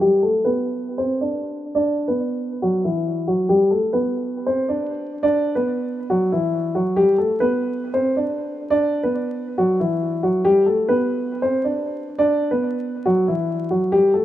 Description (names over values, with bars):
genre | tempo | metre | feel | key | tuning
hip hop | 138 BPM | 4/4 | half-time | B phrygian | A4 = 441 Hz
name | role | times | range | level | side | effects
dark concert grand piano | solo | 0.0-14.2 s | E3 to D5 | -18 LUFS | equal | low-pass filter, tape echo
room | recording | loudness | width
light reverb, small room reverb | rough home demo mix, vinyl crackle, low-pass filter | -18 LUFS | side -12 dB against mid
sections
0.0-5.2 A section; 5.2-14.2 B section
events
filter sweep 0.0-5.2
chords
0.0 Gadd9; 1.8 Bmadd11; 3.5 Asus2; 5.2 Bm; 7.0 Gadd9; 8.7 Bmadd11; 10.4 Asus2; 12.2 Bm